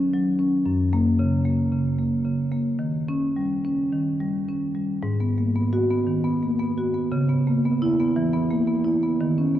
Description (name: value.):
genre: classical, contemporary piece for solo marimba.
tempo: 114 BPM.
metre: 4/4.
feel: rubato.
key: G# minor.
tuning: A4 = 439 Hz.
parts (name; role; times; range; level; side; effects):
marimba with medium mallets; solo; 0.0-9.6 s; F#2 to F#4; -21 LUFS; equal; none.
room: wet cathedral reverb, RT60 6.4 s.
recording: worn, warbling old tape, cassette tape, warbly pitch drift.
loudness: -21 LUFS.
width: side -12 dB against mid.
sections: 0.0-5.0 A section; 5.0-9.6 B section.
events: none.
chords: 0.0 D#m7 (rootless); 0.7 F#; 2.8 D#7; 5.0 G#m9; 7.1 C#m7.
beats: 0.14 | 0.66 1.18 1.71 2.25 | 2.79 3.35 3.92 4.47 | 5.01 5.54 6.07 6.59 | 7.11 7.64 8.16 8.68 | 9.19.